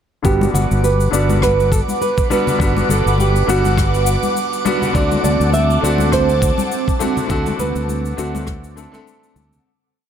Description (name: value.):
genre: sunset chillout.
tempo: 102 BPM.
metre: 4/4.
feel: swing 56% on 16ths.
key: G major.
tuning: A4 = 439 Hz.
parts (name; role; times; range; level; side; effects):
bright concert grand piano; accompaniment; 0.2-9.7 s; D3 to A4; -22 LUFS; left 2 dB; auto-pan, low-pass filter, tape echo.
airy breathy pad; sustained chords; 0.4-9.6 s; C4 to D6; -22 LUFS; right 3 dB; chorus, phaser.
fingered electric bass; bass; 0.2-9.6 s; G1 to D2; -18 LUFS; equal; none.
cabasa and rim click; drums; 0.2-9.6 s; none; -29 LUFS; left 4 dB; none.
electronic kick drum; drums; 0.2-8.6 s; none; -20 LUFS; equal; none.
nylon-string guitar; melody; 0.3-8.7 s; F#4 to E5; -21 LUFS; right 3 dB; digital delay.
congas; percussion; 0.4-9.6 s; none; -25 LUFS; left 4 dB; none.
room: light reverb, small room ambience.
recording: none.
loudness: -14 LUFS.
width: side -9 dB against mid.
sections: 0.2-9.7 groove.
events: fade-out 6.5-9.7.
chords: 0.2 Gmaj7; 5.0 D7.